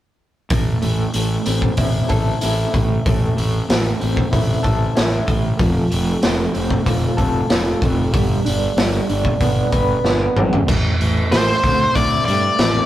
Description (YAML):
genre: quiet-loud alternative rock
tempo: 94 BPM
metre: 4/4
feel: straight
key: A minor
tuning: A4 = 440 Hz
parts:
  - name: electric guitar through a small old amp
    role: arpeggios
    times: 0.5-12.9 s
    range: A2 to B4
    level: -22 LUFS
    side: right 1 dB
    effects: tremolo
  - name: fuzz fingered electric bass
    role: bass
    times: 0.5-12.8 s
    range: F1 to G2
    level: -21 LUFS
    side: equal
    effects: overdrive
  - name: raw garage drum kit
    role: drums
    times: 0.5-12.7 s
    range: crash cymbal, hi-hat, kick drum, snare drum, toms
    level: -19 LUFS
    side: equal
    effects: none
  - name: octave-fuzz lead guitar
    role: melody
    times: 11.3-12.9 s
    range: C5 to D5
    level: -17 LUFS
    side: left 1 dB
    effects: distortion
room: light reverb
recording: rough rehearsal-room recording, warm saturation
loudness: -15 LUFS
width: side -13 dB against mid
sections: 0.5-10.7 A section; 10.7-12.9 B section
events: drum fill 10.0-10.7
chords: 0.5 Am; 5.6 F; 8.1 G; 10.7 Am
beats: | 0.50 1.14 1.78 2.42 | 3.05 3.69 4.32 4.96 | 5.60 6.23 6.87 7.50 | 8.14 8.77 9.41 10.04 | 10.68 11.31 11.95 12.58